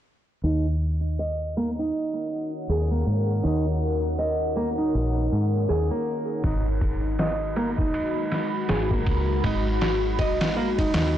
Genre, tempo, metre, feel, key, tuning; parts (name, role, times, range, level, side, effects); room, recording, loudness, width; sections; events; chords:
trip hop; 80 BPM; 4/4; swing 59% on 16ths; Eb minor; A4 = 441 Hz
deep dark ambient pad; sustained chords; 2.1-11.2 s; Ab3 to Cb6; -29 LUFS; left 2 dB; chorus, built-in reverb, vintage 12-bit sampler grit
nylon-string guitar; arpeggios; 0.4-11.2 s; Bb3 to Eb5; -28 LUFS; right 2 dB; low-pass filter, tape echo
deep dub fingered electric bass; bass; 0.4-11.2 s; Ab1 to Ab2; -26 LUFS; equal; tube saturation
trip hop sampler-style drum kit; drums; 6.4-11.2 s; kick drum, ride cymbal, snare drum; -27 LUFS; equal
light reverb; blown-out, overdriven recording, vinyl crackle, overdrive, low-pass filter; -22 LUFS; side -11 dB against mid
0.4-11.2 A section
filter sweep on ambient pad 0.4-11.2; filter sweep on nylon-string guitar 0.4-11.2; filter sweep 0.4-11.2
0.4 Ebm7; 6.4 Abm7